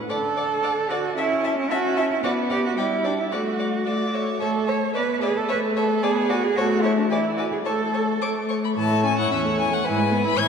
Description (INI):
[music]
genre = quick classical-period movement for string quartet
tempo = 111 BPM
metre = 2/4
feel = straight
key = D major, A major from 4.4 s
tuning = A4 = 437 Hz
[part]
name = warm violin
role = melody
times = 0.1-10.5 s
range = E5 to G#6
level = -29 LUFS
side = left 6 dB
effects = none
[part]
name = rich violin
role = second line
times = 0.1-10.5 s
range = B4 to E5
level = -29 LUFS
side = left 2 dB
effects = none
[part]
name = warm viola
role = accompaniment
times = 0.1-10.5 s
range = D3 to E4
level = -25 LUFS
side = left 1 dB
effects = none
[part]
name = rich cello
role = bass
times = 0.1-10.5 s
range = E2 to C#5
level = -24 LUFS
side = right 4 dB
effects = none
[sound]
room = wet concert hall reverb, RT60 2.5 s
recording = none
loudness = -20 LUFS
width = side -6 dB against mid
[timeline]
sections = 0.1-8.8 A section; 8.8-10.5 B section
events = none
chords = 0.1 D; 1.2 A/C#; 2.2 Bm; 2.8 Em7/G; 3.3 D/A; 3.9 A; 5.0 E/B (rootless); 5.5 N.C.; 6.0 G#m/B; 6.6 A; 7.1 E7(no3); 7.7 A; 9.8 E/G#